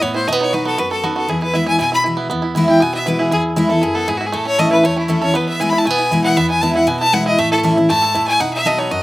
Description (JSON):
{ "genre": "bluegrass", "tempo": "236 BPM", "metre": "4/4", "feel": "straight", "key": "E major", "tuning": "A4 = 442 Hz", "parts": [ { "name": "bluegrass banjo", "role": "melody", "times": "0.0-9.0 s", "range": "A3 to A4", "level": "-22 LUFS", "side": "right 4 dB", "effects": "slapback echo" }, { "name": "clear fiddle", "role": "melody", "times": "0.0-9.0 s", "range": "E4 to B5", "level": "-17 LUFS", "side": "left 1 dB", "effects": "slapback echo" }, { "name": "picked steel-string acoustic guitar", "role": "accompaniment", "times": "0.0-9.0 s", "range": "E2 to F#4", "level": "-17 LUFS", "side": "equal", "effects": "none" } ], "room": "little or no reverb", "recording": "recorded outdoors, with no room sound", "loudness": "-14 LUFS", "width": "side -17 dB against mid", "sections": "0.0-2.3 A section; 2.3-9.0 B section", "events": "none", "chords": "0.3 B; 1.3 E; 4.3 A; 5.4 E; 7.4 A; 8.4 B", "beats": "0.01 | 0.27 0.52 0.78 1.03 | 1.29 1.54 1.79 2.05 | 2.30 2.56 2.81 3.07 | 3.32 3.57 3.83 4.08 | 4.34 4.59 4.84 5.10 | 5.35 5.61 5.86 6.12 | 6.37 6.62 6.88 7.13 | 7.38 7.64 7.89 8.15 | 8.40 8.65 8.91" }